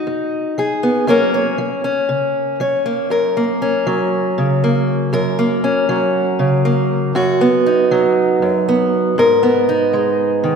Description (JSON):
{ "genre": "folk", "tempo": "119 BPM", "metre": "4/4", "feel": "straight", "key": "F# major", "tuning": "A4 = 440 Hz", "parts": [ { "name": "fingerpicked acoustic archtop guitar", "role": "solo", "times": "0.0-10.6 s", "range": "F#2 to C#5", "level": "-14 LUFS", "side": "equal", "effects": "none" } ], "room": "wet concert hall reverb, RT60 2.1 s", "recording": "recorded in a church or concert hall", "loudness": "-14 LUFS", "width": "side -6 dB against mid", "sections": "0.0-3.1 A section; 3.1-10.6 B section", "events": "build-up 0.0-3.1", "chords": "0.0 B/F#; 1.1 F#; 7.2 B/F#; 9.2 G#madd9", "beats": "0.08 0.58 | 1.09 1.60 2.10 2.61 | 3.11 3.62 4.12 4.63 | 5.13 5.64 6.14 6.65 | 7.15 7.66 8.16 8.67 | 9.17 9.68 10.18" }